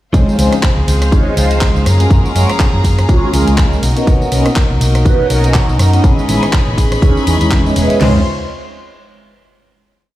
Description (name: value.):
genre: filtered disco house.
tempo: 122 BPM.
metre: 4/4.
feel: swing 56% on 16ths.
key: Db major.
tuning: A4 = 440 Hz.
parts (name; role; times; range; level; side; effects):
mellow synth brass; accompaniment; 0.1-8.2 s; Ab3 to D#5; -17 LUFS; equal; chorus, phaser, cassette tape, sidechain pumping.
rich chamber string section; sustained chords; 0.1-8.2 s; F4 to C6; -24 LUFS; left 1 dB; sidechain pumping.
direct-recorded clean electric guitar; riff; 0.1-8.2 s; D#3 to Ab4; -21 LUFS; equal; sidechain pumping.
hollow-body short-scale fingered electric bass; bass; 0.1-8.2 s; E1 to Db3; -14 LUFS; equal; sidechain pumping.
house drum kit; drums; 0.1-8.1 s; crash cymbal, kick drum, snare drum, toms; -13 LUFS; equal; none.
house drum kit; drums; 0.1-8.0 s; handclaps, hi-hat, ride cymbal, rim click, tambourine; -22 LUFS; equal; sidechain pumping on hats, sidechain pumping on cymbals, sidechain pumping on perc.
room: light reverb.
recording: played on a big sound system in a bare room, stone room reverb.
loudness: -10 LUFS.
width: side -15 dB against mid.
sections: 0.1-8.0 drop; 8.0-10.0 final chord.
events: drop 0.1-8.0.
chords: 0.1 Dbmaj7; 1.9 Gbmaj9; 3.8 Cbmaj7; 6.0 Amaj9#11; 8.0 Dbmaj7.